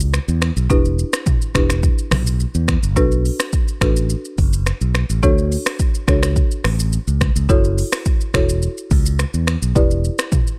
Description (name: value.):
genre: afrobeats.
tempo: 106 BPM.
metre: 4/4.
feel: straight.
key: B minor.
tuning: A4 = 440 Hz.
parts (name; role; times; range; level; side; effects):
modern bright fingered electric bass; bass; 0.0-10.1 s; E1 to E2; -20 LUFS; equal; none.
deep house drum kit; drums; 0.0-10.6 s; finger snaps, hi-hat, kick drum, rim click, shaker, toms; -20 LUFS; equal; none.
folk marimba with medium mallets; accompaniment; 0.7-10.3 s; D4 to D5; -25 LUFS; equal; none.
room: little or no reverb.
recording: none.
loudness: -18 LUFS.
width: mono.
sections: 0.0-10.6 A section.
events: none.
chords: 0.0 F#7(no3) (rootless); 0.7 Em7; 3.0 Bm7; 5.2 Dmaj7; 7.5 F#m7; 9.8 Em7.